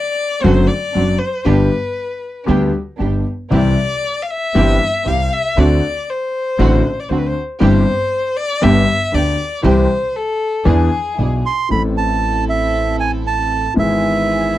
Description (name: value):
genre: tango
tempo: 118 BPM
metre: 4/4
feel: rubato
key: C major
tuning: A4 = 440 Hz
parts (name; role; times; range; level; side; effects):
- warm violin; second line; 0.0-11.4 s; G#4 to F5; -19 LUFS; left 2 dB; none
- warm concert grand piano; accompaniment; 0.4-14.6 s; G1 to A4; -17 LUFS; left 2 dB; none
- dark studio string section; stabs; 0.4-14.6 s; B3 to A4; -24 LUFS; right 6 dB; none
- upright bass; bass; 0.4-14.6 s; F#1 to E2; -18 LUFS; right 2 dB; none
- bandoneon; melody; 11.5-14.6 s; E5 to C6; -18 LUFS; right 5 dB; none
room: light reverb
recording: dry, close 1970s-style studio recording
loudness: -14 LUFS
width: side -14 dB against mid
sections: 0.0-11.7 A section; 11.7-14.6 B section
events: violin solo 0.0-11.7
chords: 0.0 D7; 1.5 G; 3.5 C; 5.6 D7; 7.6 C/G; 8.6 G; 9.6 C; 10.7 E7; 11.7 Am; 13.8 E/G#